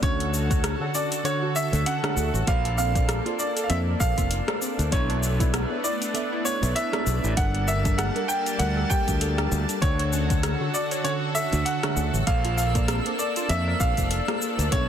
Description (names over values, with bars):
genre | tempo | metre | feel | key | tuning
sunset chillout | 98 BPM | 4/4 | swing 57% on 16ths | D major | A4 = 440 Hz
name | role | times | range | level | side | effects
clear grand piano | melody | 0.0-14.9 s | C#5 to G5 | -29 LUFS | right 1 dB | digital delay
mellow FM electric piano | accompaniment | 0.0-14.9 s | D3 to F#5 | -32 LUFS | moving between left 8 dB and right 6 dB | chorus, auto-pan, digital delay
lush unison pad | sustained chords | 0.0-14.9 s | D3 to A5 | -32 LUFS | equal | chorus
soft round pluck | arpeggios | 0.0-14.9 s | B3 to C#5 | -35 LUFS | right 4 dB | analog chorus, digital delay
modern bright fingered electric bass | bass | 0.0-14.9 s | F1 to F2 | -26 LUFS | equal | none
deep house drum kit | drums | 0.0-14.9 s | hi-hat, rim click, shaker | -31 LUFS | left 1 dB | overdrive
electronic kick drum | drums | 0.0-14.9 s | none | -25 LUFS | equal | overdrive
twinkling granular texture | texture | 10.4-14.9 s | E6 | -37 LUFS | right 2 dB | built-in reverb
room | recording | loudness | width
light reverb | dense, heavily limited modern master | -22 LUFS | side -9 dB against mid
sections
0.0-14.9 A section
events
none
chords
0.0 Dmaj7; 2.5 Bbmaj9; 4.9 Bm11; 7.4 Gmadd9; 9.8 Dmaj7; 12.3 Bbmaj9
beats
| 0.03 0.64 1.25 1.86 | 2.47 3.09 3.70 4.31 | 4.92 5.54 6.15 6.76 | 7.37 7.98 8.60 9.21 | 9.82 10.43 11.05 11.66 | 12.27 12.88 13.49 14.11 | 14.72